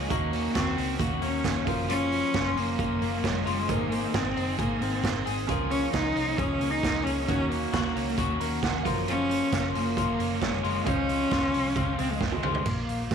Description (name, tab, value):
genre	jangly indie pop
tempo	134 BPM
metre	4/4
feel	straight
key	Db major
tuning	A4 = 440 Hz
part	clear cello	melody	0.0-13.1 s	Ab3 to Eb4	-29 LUFS	equal	slapback echo
part	bright upright piano	accompaniment	0.0-12.7 s	Gb3 to Bb5	-38 LUFS	right 12 dB	none
part	crunchy overdriven guitar	accompaniment	0.0-12.7 s	Gb2 to C5	-35 LUFS	right 12 dB	none
part	twelve-string electric guitar	arpeggios	0.0-13.1 s	Eb3 to Ab4	-32 LUFS	left 13 dB	lush chorus, slapback echo
part	vintage muted picked electric bass	bass	0.0-13.1 s	Gb1 to Eb2	-33 LUFS	left 1 dB	tube saturation
part	raw garage drum kit	drums	0.1-13.1 s	crash cymbal, hi-hat, kick drum, snare drum, toms	-31 LUFS	right 4 dB	none
room	light reverb, small room ambience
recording	1960s-style stereo with parts hard left and right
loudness	-24 LUFS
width	side -7 dB against mid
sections	0.0-12.7 A section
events	upright piano fill 8.2-9.1; drum fill 12.2-12.7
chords	0.1 Ebm7; 1.7 Gbmaj7; 3.7 Abadd9; 5.5 Db6; 7.3 Ebm7; 8.9 Gbmaj7; 10.9 Dbmaj7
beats	| 0.10 0.55 1.00 1.45 | 1.90 2.34 2.79 3.24 | 3.69 4.14 4.59 5.04 | 5.49 5.94 6.39 6.83 | 7.28 7.73 8.18 8.63 | 9.08 9.53 9.97 10.42 | 10.87 11.32 11.77 12.21 | 12.66 13.11